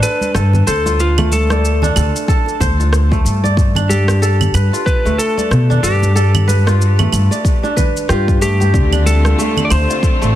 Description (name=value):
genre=organic downtempo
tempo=93 BPM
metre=4/4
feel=swing 58% on 16ths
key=D dorian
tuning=A4 = 440 Hz
part: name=clean lap steel guitar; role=melody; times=0.0-10.4 s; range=F4 to D5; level=-21 LUFS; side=left 1 dB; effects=digital delay
part: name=kora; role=arpeggios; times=0.0-10.4 s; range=A3 to D5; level=-20 LUFS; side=right 1 dB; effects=digital delay
part: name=electronic shaker, rim click and claves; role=drums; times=0.0-10.3 s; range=none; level=-23 LUFS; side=right 2 dB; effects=studio reverb
part: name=bongos and congas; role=percussion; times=0.0-9.7 s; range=none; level=-24 LUFS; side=right 2 dB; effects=none
part: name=upright bass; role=bass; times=0.3-10.3 s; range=A1 to B2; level=-14 LUFS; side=equal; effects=sidechain pumping
part: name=electronic kick drum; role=drums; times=2.3-10.2 s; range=none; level=-15 LUFS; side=equal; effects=studio reverb
part: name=rich studio string section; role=sustained chords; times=8.7-10.4 s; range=D3 to F4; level=-23 LUFS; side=left 2 dB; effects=sidechain pumping
part: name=bronze singing bowl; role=texture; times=8.7-10.4 s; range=D4 to D5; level=-27 LUFS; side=left 11 dB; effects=none
room=little or no reverb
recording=dense, heavily limited modern master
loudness=-12 LUFS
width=side -12 dB against mid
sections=0.0-10.4 A section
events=none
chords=0.0 Dm7; 3.6 G7; 8.7 Dm7